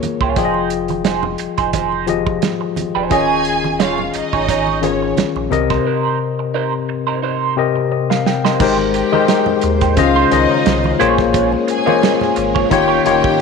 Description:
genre	lush 1970s-style soul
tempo	87 BPM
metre	4/4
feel	swing 54% on 16ths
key	F minor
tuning	A4 = 440 Hz
part	tine electric piano	accompaniment	0.0-13.4 s	C3 to G5	-16 LUFS	left 9 dB	medium stereo tremolo
part	warm soul drum kit	drums	0.0-13.4 s	crash cymbal, hi-hat, kick drum, snare drum	-20 LUFS	right 7 dB	none
part	congas	percussion	0.0-13.2 s	none	-27 LUFS	right 10 dB	none
part	electric guitar at the edge of break-up	riff	0.2-13.3 s	Eb4 to Eb5	-21 LUFS	right 12 dB	wah
part	warm sub bass	bass	0.2-13.2 s	Eb1 to Eb2	-24 LUFS	right 2 dB	none
part	warm symphonic violin section	second line	3.1-13.4 s	Db4 to Ab5	-21 LUFS	right 3 dB	none
part	string machine, violins	sustained chords	8.6-13.4 s	Eb3 to C5	-23 LUFS	right 1 dB	ensemble chorus
room	moderate echo chamber reverb, RT60 2.2 s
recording	1960s-style stereo with parts hard left and right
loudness	-14 LUFS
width	side -5 dB against mid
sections	0.0-8.6 A section; 8.6-13.4 B section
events	drum fill 7.2-8.6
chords	0.4 Fm7; 3.1 Eb7sus4; 5.5 Cm7; 8.6 Abmaj7; 10.0 Dbmaj9; 11.0 Bbm7; 12.7 Eb7

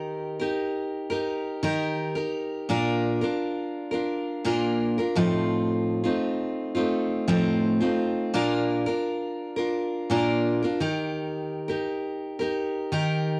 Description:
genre	pop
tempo	85 BPM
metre	4/4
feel	straight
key	Bb major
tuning	A4 = 440 Hz
part	picked steel-string acoustic guitar	solo	0.0-13.4 s	A2 to Bb4	-27 LUFS	equal	cassette tape
room	moderate small room ambience, RT60 0.5 s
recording	home recording on cassette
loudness	-27 LUFS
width	mono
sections	0.0-13.4 A section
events	none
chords	0.0 Eb; 2.7 Bb; 5.2 F7/A; 8.3 Bb; 10.8 Eb

